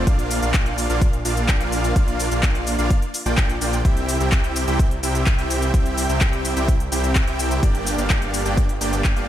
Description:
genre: EDM, festival progressive house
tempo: 127 BPM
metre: 4/4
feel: straight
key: unclear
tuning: A4 = 441 Hz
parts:
  - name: supersaw chords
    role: riff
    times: 0.0-9.3 s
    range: Bb3 to G5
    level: -24 LUFS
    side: right 1 dB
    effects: sidechain pumping, tape echo
  - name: wide detuned saw bass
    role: bass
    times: 0.0-9.3 s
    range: G1 to C2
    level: -24 LUFS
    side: equal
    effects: chorus, sidechain pumping
  - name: big-room dance drum kit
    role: drums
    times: 0.1-9.3 s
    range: cabasa, handclaps, hi-hat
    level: -26 LUFS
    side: left 1 dB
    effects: none
  - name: electronic kick drum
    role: drums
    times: 0.1-9.1 s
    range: none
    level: -19 LUFS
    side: equal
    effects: none
room: digital ambience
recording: none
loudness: -18 LUFS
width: side -11 dB against mid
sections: 0.0-9.3 A section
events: none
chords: 0.1 Bb; 3.9 C; 7.6 Gm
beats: | 0.07 0.54 1.01 1.49 | 1.96 2.43 2.90 3.38 | 3.85 4.32 4.79 5.27 | 5.74 6.21 6.68 7.16 | 7.63 8.10 8.57 9.05

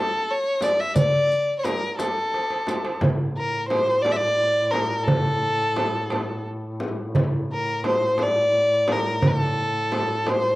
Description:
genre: Arabic maqam ensemble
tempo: 58 BPM (dotted quarters)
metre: 6/8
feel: straight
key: A maqam hijaz, A maqam kurd from 3.0 s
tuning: A4 = 439 Hz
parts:
  - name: rich violin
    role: melody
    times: 0.0-10.6 s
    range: A4 to E5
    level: -22 LUFS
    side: equal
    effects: none
  - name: darbuka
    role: percussion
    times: 0.6-10.4 s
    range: none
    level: -25 LUFS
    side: right 2 dB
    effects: none
  - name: frame drum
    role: percussion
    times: 0.6-10.4 s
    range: none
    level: -30 LUFS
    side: left 1 dB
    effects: none
  - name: riq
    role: percussion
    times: 0.6-2.8 s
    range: none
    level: -34 LUFS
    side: left 2 dB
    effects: none
  - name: mellow duduk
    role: drone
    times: 3.0-10.6 s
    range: A2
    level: -32 LUFS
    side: equal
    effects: stereo widening, cassette tape
room: light reverb, small room ambience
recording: home recording on cassette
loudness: -20 LUFS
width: side -18 dB against mid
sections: 0.0-3.0 A section; 3.0-10.6 B section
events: drum fill 2.3-3.0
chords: none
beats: | 0.96 1.99 | 3.02 4.06 | 5.09 6.13 | 7.16 8.20 | 9.23 10.27

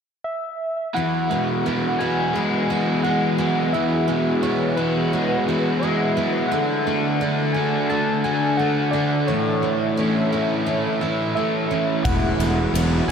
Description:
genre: rock, shoegaze and dream pop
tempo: 87 BPM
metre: 4/4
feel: straight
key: E mixolydian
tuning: A4 = 438 Hz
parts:
  - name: soft struck synth lead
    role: melody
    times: 0.2-13.1 s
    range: B4 to A5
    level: -26 LUFS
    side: left 1 dB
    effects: chorus, phaser, tape echo
  - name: overdriven electric guitar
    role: riff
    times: 0.9-13.1 s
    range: A2 to F#4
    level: -25 LUFS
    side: right 6 dB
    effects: reverse reverb
  - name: brassy analog pad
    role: sustained chords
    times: 1.0-13.1 s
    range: D3 to F#5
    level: -26 LUFS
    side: equal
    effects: chorus
  - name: picked twelve-string acoustic guitar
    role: arpeggios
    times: 1.0-13.1 s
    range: E3 to F#4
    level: -29 LUFS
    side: right 6 dB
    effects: lush chorus, tape echo
  - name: overdriven semi-hollow guitar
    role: riff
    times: 1.0-13.1 s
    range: E2 to D4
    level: -24 LUFS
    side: left 6 dB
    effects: lush chorus
  - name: fuzz fingered electric bass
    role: bass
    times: 12.1-13.1 s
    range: E1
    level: -22 LUFS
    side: equal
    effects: overdrive
  - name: huge arena drum kit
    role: drums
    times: 12.1-12.9 s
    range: kick drum, ride cymbal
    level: -26 LUFS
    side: equal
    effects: none
room: wet huge ambient reverb, RT60 7.8 s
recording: dreamy mix soaked in reverb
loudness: -19 LUFS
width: side -7 dB against mid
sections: 1.0-13.1 A section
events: none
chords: 0.0 N.C.; 1.0 Eadd9; 6.5 D; 9.3 A; 12.0 Eadd9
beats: 0.26 | 0.95 1.65 2.35 3.04 | 3.73 4.43 5.12 5.82 | 6.51 7.20 7.89 8.59 | 9.28 9.97 10.66 11.36 | 12.05 12.74

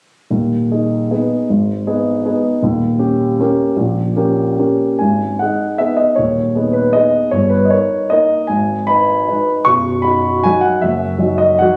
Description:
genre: classical, piano waltz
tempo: 139-167 BPM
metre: 3/4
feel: rubato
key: G# minor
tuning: A4 = 440 Hz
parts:
  - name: warm concert grand piano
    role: solo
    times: 0.3-11.8 s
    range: B0 to C#6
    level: -15 LUFS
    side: equal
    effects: none
room: moderate recital hall reverb, RT60 1.4 s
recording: recorded on a phone in the room, club reverb, compression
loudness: -15 LUFS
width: mono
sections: 0.3-5.0 A section; 5.0-11.8 B section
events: none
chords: 0.3 G#m/D#; 2.6 D#7; 5.0 G#m; 7.3 D#7/G; 8.5 G#m; 9.7 B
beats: | 0.32 0.71 1.11 | 1.49 1.86 2.25 | 2.62 2.99 3.40 | 3.78 4.17 4.58 | 5.00 5.39 5.79 | 6.17 6.55 6.95 | 7.33 7.71 8.11 | 8.50 8.89 9.29 | 9.67 10.05 10.44 | 10.82 11.20 11.60

